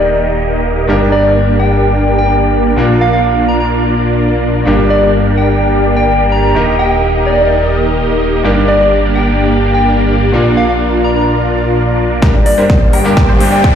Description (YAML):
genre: EDM, festival progressive house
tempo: 127 BPM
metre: 4/4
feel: straight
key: G minor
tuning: A4 = 444 Hz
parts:
  - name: soft struck synth lead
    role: melody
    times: 0.0-13.8 s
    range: D5 to Bb5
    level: -16 LUFS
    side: left 1 dB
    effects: chorus, ping-pong delay
  - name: bright concert grand piano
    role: accompaniment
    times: 0.0-13.7 s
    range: G2 to C5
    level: -18 LUFS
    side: left 2 dB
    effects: sidechain pumping
  - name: lush unison pad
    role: sustained chords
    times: 0.0-13.8 s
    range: G2 to Bb4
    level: -19 LUFS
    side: right 1 dB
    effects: chorus, sidechain pumping
  - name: supersaw chords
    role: riff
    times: 0.0-13.8 s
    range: G3 to Eb5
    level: -15 LUFS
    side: equal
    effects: phaser, analog chorus, sidechain pumping, low-pass filter, ping-pong delay
  - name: wide detuned saw bass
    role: bass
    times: 0.0-12.2 s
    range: Eb1 to Bb1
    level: -16 LUFS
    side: equal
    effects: chorus, tube saturation, sidechain pumping
  - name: wide unison pluck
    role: arpeggios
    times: 12.2-13.8 s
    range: Bb4 to D5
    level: -23 LUFS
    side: right 1 dB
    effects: none
  - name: big-room dance drum kit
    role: drums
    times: 12.2-13.7 s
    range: hi-hat, snare drum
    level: -21 LUFS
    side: equal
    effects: overdrive, low-pass filter on hats, low-pass filter on snare
  - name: electronic kick drum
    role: drums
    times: 12.2-13.7 s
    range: none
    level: -10 LUFS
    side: equal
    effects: overdrive
  - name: riser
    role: sound effects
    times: 12.6-13.8 s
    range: none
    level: -22 LUFS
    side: equal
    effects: none
room: moderate lush hall reverb, RT60 2.0 s, digital ambience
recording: played on a big sound system in a bare room, stone room reverb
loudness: -9 LUFS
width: side -8 dB against mid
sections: 0.0-12.2 A section; 12.2-13.8 B section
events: filter sweep on analog synth pad 0.0-12.2, 12.2-13.8; build-up 12.2-13.8; drum fill 12.2-13.8; riser 12.6-13.8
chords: 0.0 Eb; 0.9 Gm; 2.8 Bb; 4.7 Gm; 6.6 Eb; 8.4 Gm; 10.3 Bb; 12.2 Gm